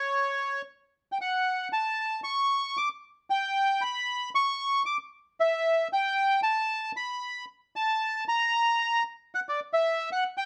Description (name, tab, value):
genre	tango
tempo	114 BPM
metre	4/4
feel	rubato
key	unclear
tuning	A4 = 440 Hz
part	bandoneon	solo	0.0-10.5 s	C#5 to D6	-28 LUFS	equal	none
room	moderate studio reverb, RT60 0.7 s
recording	none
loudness	-28 LUFS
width	mono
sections	0.0-9.3 A section; 9.3-10.5 B section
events	none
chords	none